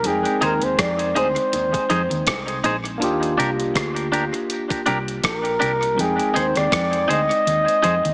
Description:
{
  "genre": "lovers rock reggae",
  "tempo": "81 BPM",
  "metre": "4/4",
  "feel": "swing 56% on 16ths",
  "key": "unclear",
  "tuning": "A4 = 440 Hz",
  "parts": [
    { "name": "breathy flugelhorn", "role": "melody", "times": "0.0-8.1 s", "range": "Ab4 to Eb5", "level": "-20 LUFS", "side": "equal", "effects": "dub echo" },
    { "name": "barky tine electric piano", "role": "accompaniment", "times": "0.0-8.1 s", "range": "G3 to G5", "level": "-25 LUFS", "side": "equal", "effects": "overdrive, dub echo" },
    { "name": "vintage muted fingered electric bass", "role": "bass", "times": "0.0-8.1 s", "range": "Bb1 to F2", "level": "-29 LUFS", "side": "equal", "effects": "none" },
    { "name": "crisp 8-bit digital drum machine", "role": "drums", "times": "0.0-8.1 s", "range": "hi-hat, kick drum, rim click", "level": "-26 LUFS", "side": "equal", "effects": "dub echo" },
    { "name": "clean electric guitar", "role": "riff", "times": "0.1-8.1 s", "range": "Bb2 to F3", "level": "-32 LUFS", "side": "equal", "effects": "none" },
    { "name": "clean electric guitar", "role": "stabs", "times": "0.4-7.9 s", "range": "D4 to C5", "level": "-24 LUFS", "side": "equal", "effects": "dub echo" }
  ],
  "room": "moderate plate reverb, RT60 2.8 s",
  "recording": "small speaker sound",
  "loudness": "-18 LUFS",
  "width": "side -34 dB against mid",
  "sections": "0.0-8.1 A section",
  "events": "none",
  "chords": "0.1 Fm7; 3.0 Ebmaj7; 6.0 Fm7",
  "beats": "| 0.05 0.79 1.53 2.27 | 3.02 3.76 4.50 5.24 | 5.98 6.72 7.46"
}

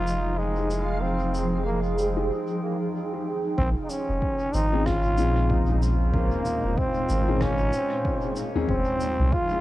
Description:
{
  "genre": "ambient dub",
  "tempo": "94 BPM",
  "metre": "4/4",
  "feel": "swing 59% on 16ths",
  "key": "unclear",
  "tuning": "A4 = 439 Hz",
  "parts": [
    { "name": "growling trombone", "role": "melody", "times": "0.0-9.6 s", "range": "Ab3 to F4", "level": "-27 LUFS", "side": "equal", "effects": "cassette tape, dub echo, plate reverb" },
    { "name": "granular cloud pad", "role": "sustained chords", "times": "0.0-9.6 s", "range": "Bb2 to G5", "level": "-30 LUFS", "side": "right 1 dB", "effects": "built-in reverb, cassette tape, plate reverb" },
    { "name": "soft dub sub bass", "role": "bass", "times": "0.0-9.3 s", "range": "F1 to C2", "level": "-25 LUFS", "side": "equal", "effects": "none" },
    { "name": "backwards swelling texture", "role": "texture", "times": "0.4-2.3 s", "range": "F4 to F5", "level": "-43 LUFS", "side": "right 4 dB", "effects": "none" },
    { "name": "soft-mallet drum kit", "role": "drums", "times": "0.1-9.2 s", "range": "rim click, shaker, toms", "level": "-36 LUFS", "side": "right 1 dB", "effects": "cassette tape, dub echo" },
    { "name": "dark upright piano", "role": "stabs", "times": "2.2-8.7 s", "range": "Db3 to Ab4", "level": "-33 LUFS", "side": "left 6 dB", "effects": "cassette tape, dub echo, plate reverb" },
    { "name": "electronic kick drum", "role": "drums", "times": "3.6-9.5 s", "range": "none", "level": "-31 LUFS", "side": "equal", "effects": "overdrive, cassette tape" }
  ],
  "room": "light reverb",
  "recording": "home recording on cassette",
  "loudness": "-22 LUFS",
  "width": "side -15 dB against mid",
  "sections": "0.0-3.6 A section; 3.6-9.6 B section",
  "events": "filter sweep on ambient pad 0.0-3.6; break 2.3-3.6",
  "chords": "0.0 Fm9; 3.6 Bbm11; 8.7 F7sus2",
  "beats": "0.39 | 1.03 1.67 2.30 2.94 | 3.58 4.22 4.86 5.50 | 6.13 6.77 7.41 8.05 | 8.69 9.32"
}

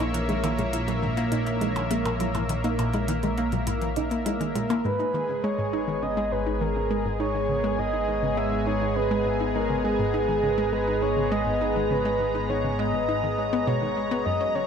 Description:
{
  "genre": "ambient, sequencer-driven space music",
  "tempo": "102 BPM",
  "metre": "4/4",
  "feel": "straight",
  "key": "G# minor",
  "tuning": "A4 = 440 Hz",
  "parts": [
    { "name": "lush unison pad", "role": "sustained chords", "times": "0.0-14.7 s", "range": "F#3 to A#5", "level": "-28 LUFS", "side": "right 1 dB", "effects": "chorus" },
    { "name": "soft round pluck", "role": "arpeggios", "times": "0.0-4.6 s", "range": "G#2 to D#4", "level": "-31 LUFS", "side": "right 2 dB", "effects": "chorus, auto-pan, ping-pong delay" },
    { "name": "analog pluck", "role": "riff", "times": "0.0-14.6 s", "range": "F#2 to E4", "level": "-30 LUFS", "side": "equal", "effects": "chorus, ping-pong delay" },
    { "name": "analog drone", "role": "bass", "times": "0.0-14.7 s", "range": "F#1 to A#1", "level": "-31 LUFS", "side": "equal", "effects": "chorus" },
    { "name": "electronic hi-hat and percussion blips", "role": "percussion", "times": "0.0-4.8 s", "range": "none", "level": "-38 LUFS", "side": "right 1 dB", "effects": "overdrive, ping-pong delay" },
    { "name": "breathy flute-like synth lead", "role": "melody", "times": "4.8-14.7 s", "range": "G#4 to E5", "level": "-27 LUFS", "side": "left 1 dB", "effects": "chorus, ping-pong delay" }
  ],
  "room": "wet plate reverb, RT60 2.5 s",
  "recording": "echo-heavy mix",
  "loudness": "-23 LUFS",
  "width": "side -7 dB against mid",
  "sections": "0.0-4.8 A section; 4.8-14.7 B section",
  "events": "none",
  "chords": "0.0 A#dim; 4.8 G#madd9",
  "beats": "| 0.14 0.73 1.32 1.91 | 2.50 3.08 3.67 4.26 | 4.85 5.44 6.03 6.61 | 7.20 7.79 8.38 8.97 | 9.55 10.14 10.73 11.32 | 11.91 12.49 13.08 13.67 | 14.26"
}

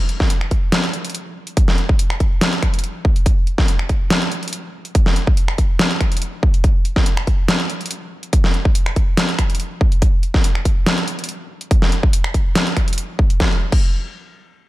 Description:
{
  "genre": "heavy wobble dubstep",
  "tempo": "142 BPM",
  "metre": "4/4",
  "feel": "half-time",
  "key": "none",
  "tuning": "none",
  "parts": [
    { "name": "dubstep drum kit", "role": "drums", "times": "0.1-13.8 s", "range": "crash cymbal, finger snaps, hi-hat, snare drum", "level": "-20 LUFS", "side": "equal", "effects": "overdrive" },
    { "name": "electronic kick drum", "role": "drums", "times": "0.2-13.8 s", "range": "none", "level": "-15 LUFS", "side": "equal", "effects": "overdrive" }
  ],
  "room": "little or no reverb",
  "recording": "dark, warm production",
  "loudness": "-15 LUFS",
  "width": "side -17 dB against mid",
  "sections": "0.0-13.4 A section; 13.4-14.7 B section",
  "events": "none",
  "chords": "none",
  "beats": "0.30 0.72 1.15 | 1.57 1.99 2.42 2.84 | 3.26 3.68 4.11 4.53 | 4.95 5.37 5.79 6.22 | 6.64 7.06 7.49 7.91 | 8.33 8.75 9.18 9.60 | 10.02 10.44 10.87 11.29 | 11.71 12.13 12.56 12.98 | 13.40"
}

